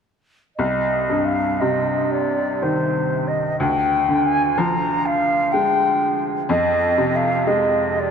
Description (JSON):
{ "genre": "celtic folk, Celtic slow air", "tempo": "62 BPM", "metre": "3/4", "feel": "rubato", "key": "C minor", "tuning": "A4 = 435 Hz", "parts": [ { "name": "mellow wooden flute", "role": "melody", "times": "0.6-8.1 s", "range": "C5 to Bb5", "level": "-20 LUFS", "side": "equal", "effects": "none" }, { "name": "bright upright piano", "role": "accompaniment", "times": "0.6-8.1 s", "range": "C2 to Ab3", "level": "-21 LUFS", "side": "equal", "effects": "none" } ], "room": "wet church reverb, RT60 3.5 s", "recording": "none", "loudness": "-17 LUFS", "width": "side -7 dB against mid", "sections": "0.6-8.1 A section", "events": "none", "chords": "0.6 Cm; 3.6 Ddim; 6.5 Fm", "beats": "| 0.57 1.60 2.61 | 3.59 4.56 5.53 | 6.50 7.46" }